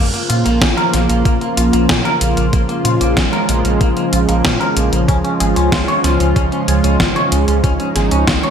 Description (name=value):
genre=synthwave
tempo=94 BPM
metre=4/4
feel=straight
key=Bb minor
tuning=A4 = 440 Hz
part: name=chorused pulse-width pad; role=sustained chords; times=0.0-8.5 s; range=Db3 to F4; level=-17 LUFS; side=right 1 dB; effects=sidechain pumping, shimmer reverb
part: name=clean electric guitar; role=riff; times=0.0-8.5 s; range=Bb3 to Db5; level=-20 LUFS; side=equal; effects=wide subtle chorus, ping-pong delay, shimmer reverb
part: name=round analog bass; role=bass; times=0.0-8.4 s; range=Ab1 to Bb2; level=-18 LUFS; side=equal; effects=sidechain pumping
part: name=gated 80s digital drum machine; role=drums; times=0.1-8.5 s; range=hi-hat, snare drum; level=-19 LUFS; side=equal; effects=gated reverb, gated reverb snare, overdrive
part: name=electronic kick drum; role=drums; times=0.6-8.4 s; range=none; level=-18 LUFS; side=equal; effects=overdrive
room=moderate plate reverb, RT60 2.0 s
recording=bright 1980s-style digital production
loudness=-12 LUFS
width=side -8 dB against mid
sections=0.0-8.5 A section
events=none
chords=0.0 Bbm; 5.1 Db